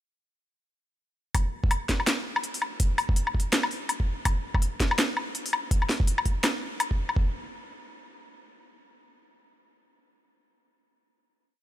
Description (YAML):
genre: drum and bass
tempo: 165 BPM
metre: 4/4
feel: swing 59% on 16ths, half-time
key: none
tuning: none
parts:
  - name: drum and bass drum kit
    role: drums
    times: 1.3-7.2 s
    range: hi-hat, snare drum, woodblock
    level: -27 LUFS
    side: left 1 dB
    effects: studio reverb
  - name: electronic kick drum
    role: drums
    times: 1.3-7.3 s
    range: none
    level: -25 LUFS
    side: equal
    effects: studio reverb
room: digital ambience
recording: none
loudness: -24 LUFS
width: side -13 dB against mid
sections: 1.3-7.2 drop; 7.2-10.1 final hit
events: drop 1.3-7.2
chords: none